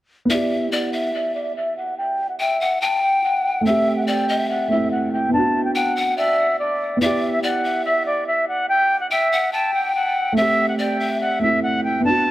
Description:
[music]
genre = hip hop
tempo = 143 BPM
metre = 4/4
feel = half-time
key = E minor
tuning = A4 = 440 Hz
[part]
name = concert flute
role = melody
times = 0.3-12.3 s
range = D5 to A5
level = -21 LUFS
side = equal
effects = low-pass filter, dub echo
[part]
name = breathy mellow pan flute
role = second line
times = 0.3-11.6 s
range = D5 to G5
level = -23 LUFS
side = left 2 dB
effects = dub echo
[part]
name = dark baby grand piano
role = accompaniment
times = 0.3-12.3 s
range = A3 to G4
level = -22 LUFS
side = right 1 dB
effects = low-pass filter, dub echo
[sound]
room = moderate spring reverb, RT60 1.9 s, small room ambience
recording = echo-heavy mix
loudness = -18 LUFS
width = side -15 dB against mid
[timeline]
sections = 0.3-12.3 A section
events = filter sweep 0.3-12.3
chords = 0.3 Em; 3.7 Am7; 5.3 Bm; 7.0 Em; 10.4 Am7

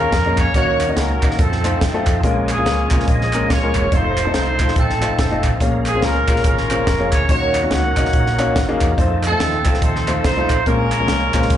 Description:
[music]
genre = uptempo gospel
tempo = 142 BPM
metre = 4/4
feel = swing 61% on 8ths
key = Bb minor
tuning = A4 = 440 Hz
[part]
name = warm horn section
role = melody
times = 0.0-11.6 s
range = C4 to Gb5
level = -20 LUFS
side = right 1 dB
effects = slapback echo
[part]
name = warm upright piano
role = accompaniment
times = 0.0-11.6 s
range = Bb2 to Eb5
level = -22 LUFS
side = left 4 dB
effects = slapback echo
[part]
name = overdriven tonewheel organ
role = sustained chords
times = 0.0-11.6 s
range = F3 to Bb4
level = -28 LUFS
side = right 4 dB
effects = slow rotary speaker, chorus vibrato
[part]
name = fingered electric bass with an envelope filter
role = bass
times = 0.0-11.6 s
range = E1 to Gb2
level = -22 LUFS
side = equal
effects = none
[part]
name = crisp fusion drum kit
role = drums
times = 0.1-11.6 s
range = hi-hat, kick drum, snare drum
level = -20 LUFS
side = equal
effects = none
[part]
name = group handclap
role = percussion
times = 0.4-11.4 s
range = none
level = -28 LUFS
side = right 2 dB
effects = slapback echo
[sound]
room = studio ambience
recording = live gig heard through the venue's PA, club reverb, nothing above 11.0 kHz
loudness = -15 LUFS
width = side -10 dB against mid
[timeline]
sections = 0.0-11.6 A section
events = none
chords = 0.0 Bbm7; 0.5 Ebm7; 1.4 F7; 2.2 Bbm7; 3.9 F7; 5.6 Bbm7; 7.3 Ebm7; 9.0 F7; 10.7 Bbm7

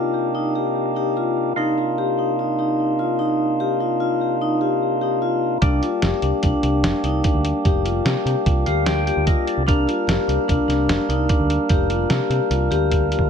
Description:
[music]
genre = progressive instrumental, band music in an uneven meter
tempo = 148 BPM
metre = 5/4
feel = straight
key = C minor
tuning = A4 = 441 Hz
[part]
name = percussive tonewheel organ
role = accompaniment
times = 0.0-13.3 s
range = C3 to G5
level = -23 LUFS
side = right 3 dB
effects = overdrive, stopped rotary speaker
[part]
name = vibraphone with soft mallets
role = arpeggios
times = 0.0-13.3 s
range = D4 to G4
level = -22 LUFS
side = left 6 dB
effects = ping-pong delay
[part]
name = picked electric bass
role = bass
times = 5.6-13.3 s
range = F1 to C3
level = -22 LUFS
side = right 1 dB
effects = none
[part]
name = lo-fi sampler-style drum kit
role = drums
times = 5.6-13.3 s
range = hi-hat, kick drum, snare drum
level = -22 LUFS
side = right 1 dB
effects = none
[sound]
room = moderate plate reverb, RT60 1.5 s, digital ambience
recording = dreamy mix soaked in reverb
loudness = -18 LUFS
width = side -7 dB against mid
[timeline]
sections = 0.0-13.3 A section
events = tonewheel organ fill 8.5-9.7; drum fill 12.9-13.3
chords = 0.0 Cm7; 5.6 Gm

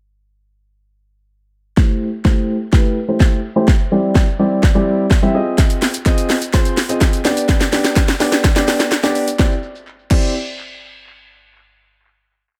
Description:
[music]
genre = dance-pop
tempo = 126 BPM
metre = 4/4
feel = straight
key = C major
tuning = A4 = 439 Hz
[part]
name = dark grand piano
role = accompaniment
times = 1.8-10.3 s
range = G3 to E5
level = -20 LUFS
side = equal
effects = sidechain pumping, low-pass filter
[part]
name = house drum kit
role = drums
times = 1.8-10.2 s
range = crash cymbal, hi-hat, kick drum, shaker, snare drum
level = -16 LUFS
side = equal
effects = none
[part]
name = group handclap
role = percussion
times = 6.1-10.3 s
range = none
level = -35 LUFS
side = equal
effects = none
[sound]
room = light reverb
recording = echo-heavy mix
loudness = -16 LUFS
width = mono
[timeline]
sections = 1.8-9.4 build; 9.4-11.3 final chord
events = build-up 1.8-9.4; drum fill 1.8-9.4; filter sweep on grand piano 1.8-9.4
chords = 1.8 Am7; 3.7 Cadd9/G; 5.3 Ab6; 7.2 G; 9.4 Cadd9

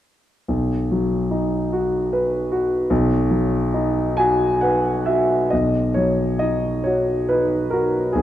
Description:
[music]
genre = classical, romantic character piece for solo piano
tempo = 43-51 BPM (dotted quarters)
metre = 6/8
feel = rubato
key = B major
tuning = A4 = 439 Hz
[part]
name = warm grand piano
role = solo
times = 0.5-8.2 s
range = B1 to G#5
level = -18 LUFS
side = equal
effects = none
[sound]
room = moderate recital hall reverb, RT60 1.4 s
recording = none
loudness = -18 LUFS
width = side -12 dB against mid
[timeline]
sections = 0.5-5.5 A section; 5.5-8.2 B section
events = none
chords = 0.5 B

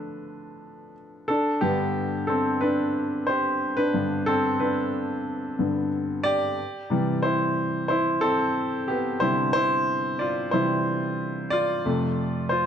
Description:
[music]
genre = pop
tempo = 91 BPM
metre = 4/4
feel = straight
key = unclear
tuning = A4 = 440 Hz
[part]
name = clear baby grand piano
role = solo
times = 0.0-12.7 s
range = F2 to D5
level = -23 LUFS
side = equal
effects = none
[sound]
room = moderate studio reverb, RT60 0.8 s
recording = dark, warm production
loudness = -22 LUFS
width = side -8 dB against mid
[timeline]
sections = 0.0-6.6 A section; 6.6-12.7 B section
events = grand piano solo 0.0-6.6, 6.6-12.7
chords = 0.0 Dm; 1.3 G; 6.6 Cadd9; 11.8 F

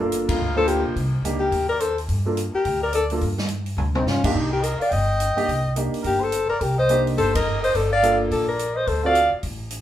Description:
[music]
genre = jazz, small-group swing and bop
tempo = 212 BPM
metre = 4/4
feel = swing 61% on 8ths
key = G minor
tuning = A4 = 440 Hz
[part]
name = warm concert grand piano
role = accompaniment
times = 0.0-9.1 s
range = Bb3 to C5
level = -26 LUFS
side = right 2 dB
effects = none
[part]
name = upright bass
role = bass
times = 0.0-9.8 s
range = G1 to G2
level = -26 LUFS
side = equal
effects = none
[part]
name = swinging big-band drum kit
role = drums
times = 0.1-9.8 s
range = crash cymbal, hi-hat, kick drum, ride cymbal, snare drum, toms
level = -30 LUFS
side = equal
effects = none
[part]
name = clear alto saxophone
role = melody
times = 0.3-9.3 s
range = C4 to Eb5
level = -22 LUFS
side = left 3 dB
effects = none
[part]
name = breathy trumpet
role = second line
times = 0.3-9.3 s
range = Eb4 to G5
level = -26 LUFS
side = right 3 dB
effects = none
[sound]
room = wet studio reverb, RT60 0.6 s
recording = band playing live in one room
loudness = -19 LUFS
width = side -12 dB against mid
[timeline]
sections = 0.0-9.8 A section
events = band accent 0.2, 7.3; drum fill 3.8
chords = 0.0 Gm7; 0.9 Cm7; 2.1 Gm; 4.3 Cm7; 7.7 Gm7; 8.9 Dm

